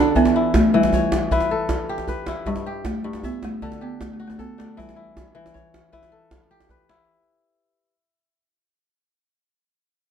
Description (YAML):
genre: west african traditional, West African string and xylophone music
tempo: 104 BPM (dotted quarters)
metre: 12/8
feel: straight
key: unclear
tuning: A4 = 442 Hz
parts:
  - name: balafon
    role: melody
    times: 0.0-6.7 s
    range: G3 to D4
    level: -22 LUFS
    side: right 3 dB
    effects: none
  - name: kora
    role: arpeggios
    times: 0.0-8.5 s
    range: G2 to E5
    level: -24 LUFS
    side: left 4 dB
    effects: none
  - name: djembe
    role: percussion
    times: 0.1-7.0 s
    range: none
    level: -25 LUFS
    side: right 1 dB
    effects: none
room: moderate small room reverb, RT60 0.5 s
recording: dark, warm production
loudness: -19 LUFS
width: side -8 dB against mid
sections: 0.0-7.1 A section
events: fade-out 0.0-7.1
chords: 0.2 Em; 2.5 G; 3.6 D; 4.8 Em